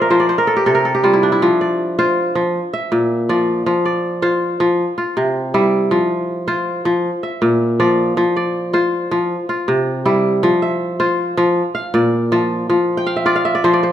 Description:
west african traditional; 106 BPM (dotted quarters); 12/8; straight; F major; A4 = 440 Hz
kora; solo; 0.0-13.9 s; Bb2 to A5; -14 LUFS; equal
moderate recital hall reverb, RT60 1.6 s; minimal, uncompressed stereo recording; -14 LUFS; side -11 dB against mid
0.0-10.4 A section; 10.4-13.9 A section
kora fill 0.0-1.4, 13.0-13.9
0.3 C5; 1.4 F5; 2.5 Bb; 3.7 F5; 4.8 C; 5.9 F5; 7.0 Bb; 8.2 F5; 9.3 C; 10.4 F5; 11.6 Bb; 12.7 F

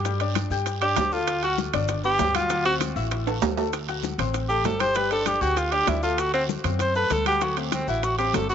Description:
Afro-Cuban jazz; 195 BPM; 4/4; straight; D mixolydian; A4 = 444 Hz
breathy tenor saxophone; melody; 0.0-8.5 s; A3 to C5; -24 LUFS; right 1 dB; tape echo
bright upright piano; accompaniment; 0.0-8.5 s; F#3 to G6; -30 LUFS; left 11 dB
upright bass; bass; 0.0-8.5 s; G1 to G2; -29 LUFS; right 1 dB
bongos; percussion; 0.1-8.5 s; -34 LUFS; left 11 dB
congas; percussion; 0.1-8.5 s; -35 LUFS; left 12 dB
guiro; percussion; 0.1-8.5 s; -39 LUFS; right 17 dB
maracas; percussion; 0.1-8.5 s; -42 LUFS; left 12 dB
timbales; percussion; 0.1-8.5 s; -29 LUFS; right 14 dB
moderate spring reverb, RT60 2.8 s; 1960s-style stereo with parts hard left and right, nothing above 7.8 kHz; -22 LUFS; side -8 dB against mid
0.0-3.7 A section; 3.7-8.5 A section
tenor saxophone solo 0.0-8.5; drum fill 3.3-3.7
0.0 Gsus2; 1.3 D; 1.9 G; 2.5 D9; 3.1 A5; 3.7 D7; 5.0 Gsus2; 6.2 D7

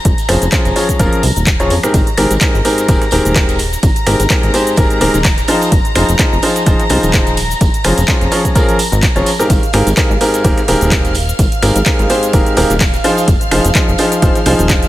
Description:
piano house; 127 BPM; 4/4; swing 55% on 16ths; Ab major; A4 = 438 Hz
dark studio string section; sustained chords; 0.0-14.9 s; F5 to Bb6; -22 LUFS; equal; sidechain pumping
plucky analog bass; bass; 0.1-14.9 s; Eb1 to F2; -16 LUFS; equal; tube saturation, sidechain pumping
electronic kick drum; drums; 0.1-14.8 s; -14 LUFS; equal
house drum kit; drums; 0.1-14.9 s; finger snaps, handclaps, hi-hat, shaker; -19 LUFS; equal; overdrive
tambourine; percussion; 0.1-14.9 s; -27 LUFS; right 6 dB
clear baby grand piano; riff; 0.3-14.9 s; Ab2 to Db5; -15 LUFS; equal; sidechain pumping, tape echo
breakbeat sampler-style drum kit; drums; 1.9-14.8 s; ride cymbal, snare drum; -28 LUFS; right 2 dB
digital ambience; -10 LUFS; side -15 dB against mid
0.0-14.9 A section
0.1 Dbmaj7/F; 1.9 Abmaj9; 5.5 Fm7; 7.6 Dbmaj7/F; 9.5 Abmaj9; 13.0 Fm7

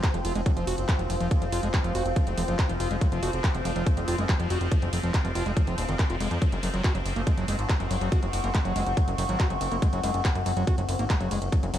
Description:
psychedelic trance; 141 BPM; 4/4; straight; A4 = 436 Hz
bubbling stepped-filter texture; sustained chords; 0.0-11.8 s; F3 to C4; -34 LUFS; equal; chorus, built-in reverb, sidechain pumping
electronic kick drum; drums; 0.0-11.6 s; -26 LUFS; equal; small room ambience
techno drum kit; drums; 0.0-11.8 s; handclaps, hi-hat, ride cymbal; -35 LUFS; right 1 dB; overdrive, small room ambience
warbly tape-like pad; texture; 0.6-11.8 s; F4 to Db6; -35 LUFS; left 2 dB; chorus, built-in reverb, sidechain pumping
overdriven acid bass; riff; 0.1-11.8 s; Eb3 to Gb4; -32 LUFS; moving between left 5 dB and right 4 dB; auto-pan, sidechain pumping, ping-pong delay
fat analog bass; bass; 0.1-11.8 s; Eb1 to F2; -29 LUFS; equal
light reverb, digital ambience; dark, warm production; -24 LUFS; side -11 dB against mid
0.0-11.8 A section
0.0 F5; 6.4 Gb5

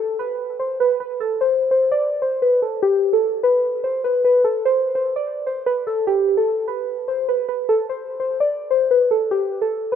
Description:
hip hop; 148 BPM; 4/4; half-time; A4 = 440 Hz
muted felt-like synth keys; solo; 0.0-10.0 s; G4 to D5; -18 LUFS; equal; chorus, low-pass filter
moderate lush hall reverb, RT60 3.2 s; rough home demo mix; -17 LUFS; side -8 dB against mid
0.0-7.7 A section; 7.7-10.0 B section

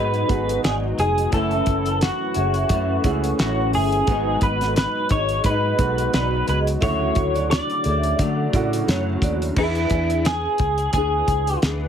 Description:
indie pop, bedroom pop; 87 BPM; 4/4; swing 55% on 16ths; A4 = 441 Hz
electric guitar through a small old amp; melody; 0.0-11.6 s; E4 to D5; -23 LUFS; equal; analog chorus, slapback echo
vibraphone with hard mallets; second line; 0.0-9.4 s; E4 to F#5; -29 LUFS; right 4 dB; ensemble chorus, slapback echo
nylon-string guitar; accompaniment; 0.0-11.9 s; F#2 to G#4; -27 LUFS; left 4 dB; ensemble chorus, vibrato effect
warm upright piano; accompaniment; 0.0-9.6 s; C#3 to G#5; -29 LUFS; right 6 dB
vintage muted fingered electric bass; bass; 0.0-11.9 s; F1 to D3; -24 LUFS; equal
cloth-damped thuddy drum kit; drums; 0.1-11.8 s; crash cymbal, hi-hat, kick drum, snare drum; -24 LUFS; equal
light reverb; heavily compressed radio sound, multiband compression; -18 LUFS; side -8 dB against mid
0.0-9.6 A section; 9.6-11.9 B section
0.0 G#m7; 1.3 F#m7; 4.1 G#m7; 6.8 Dmaj7; 9.6 E7

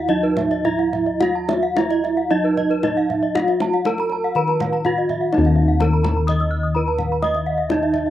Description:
Balinese gamelan; 107-126 BPM; 4/4; straight; Eb pelog; A4 = 440 Hz
gamelan-type bronze metallophone; melody; 0.0-8.1 s; Eb4 to Eb5; -21 LUFS; right 3 dB
gamelan-type bronze metallophone; arpeggios; 0.0-8.1 s; Cb5-40c to Gb6-50c; -24 LUFS; left 6 dB
gamelan-type bossed gongs; bass; 0.0-8.1 s; Eb2 to Eb5; -22 LUFS; left 1 dB
kendang; percussion; 0.1-8.1 s; -28 LUFS; left 4 dB; slapback echo
gamelan-type bronze metallophone; arpeggios; 0.2-8.1 s; Cb5-40c to Fb6; -26 LUFS; right 6 dB; slapback echo
little or no reverb; recorded outdoors, with no room sound; -17 LUFS; side -12 dB against mid
0.0-5.3 A section; 5.3-8.1 B section

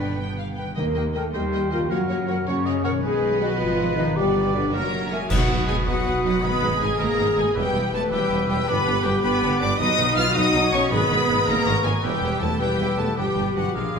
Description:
cinematic, heroic adventure film score; 106 BPM (dotted quarters); 6/8; straight; A4 = 440 Hz
rich studio violin section; melody; 0.0-14.0 s; D5 to E#6; -28 LUFS; left 3 dB
concert flute; second line; 0.0-14.0 s; D5 to E6; -33 LUFS; equal
warm clarinet; second line; 0.0-14.0 s; F#4 to B4; -33 LUFS; left 1 dB
warm oboe; second line; 0.0-14.0 s; Bb4 to Eb5; -32 LUFS; right 4 dB
warm symphonic violin section; second line; 0.0-14.0 s; G#3 to G5; -35 LUFS; left 1 dB
rich symphonic viola section; accompaniment; 0.0-14.0 s; Bb3 to E#5; -29 LUFS; right 1 dB
dark French horn section; sustained chords; 0.0-13.9 s; Db4 to B4; -26 LUFS; left 4 dB
concert harp; arpeggios; 0.0-14.0 s; E2 to E6; -32 LUFS; left 4 dB
dark symphonic cello section; bass; 0.0-14.0 s; Db3 to E#4; -29 LUFS; right 2 dB
rich symphonic double bass section; bass; 0.0-14.0 s; E1 to Gb2; -30 LUFS; right 3 dB
timpani; percussion; 0.8-1.3, 5.3-5.8, 9.8-10.3 s; B2 to Eb3; -32 LUFS; equal
cymbal swell, clash cymbals and concert bass drum; percussion; 3.0-6.0 s; -28 LUFS; right 1 dB
mellow tuba; bass; 5.3-14.0 s; E1 to B1; -29 LUFS; right 4 dB
wet recital hall reverb, RT60 1.5 s; recorded in a church or concert hall; -19 LUFS; side -6 dB against mid
0.0-5.3 A section; 5.3-14.0 B section
band accent 5.3-5.7
0.0 G; 0.8 Eb; 1.9 Gb; 3.0 B; 4.2 G; 4.7 Gb7; 5.3 B; 6.4 G#m; 7.6 Em; 8.7 G; 9.8 B; 10.9 G#m; 12.0 Em; 13.2 G

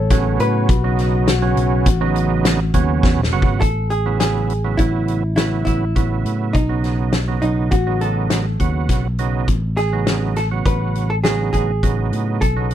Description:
progressive instrumental, band music in an uneven meter; 102 BPM; 5/4; straight; B mixolydian; A4 = 436 Hz
vintage hollow-body jazz guitar; melody; 0.0-12.7 s; D#4 to C#5; -23 LUFS; right 1 dB
mellow flugelhorn; second line; 0.0-3.0 s; F#4 to A4; -25 LUFS; left 16 dB
picked electric bass; bass; 0.0-12.7 s; D#1 to A2; -19 LUFS; equal
overdriven tonewheel organ; accompaniment; 0.1-12.7 s; C#3 to F#4; -23 LUFS; right 10 dB; chorus vibrato
loose indie drum kit; drums; 0.1-12.7 s; hi-hat, kick drum, snare drum; -20 LUFS; left 1 dB
little or no reverb; -16 LUFS; side -11 dB against mid
0.0-3.6 A section; 3.6-12.7 B section
drum fill 3.0-3.6
0.0 A; 0.7 B7; 3.6 Amaj7; 6.5 B7

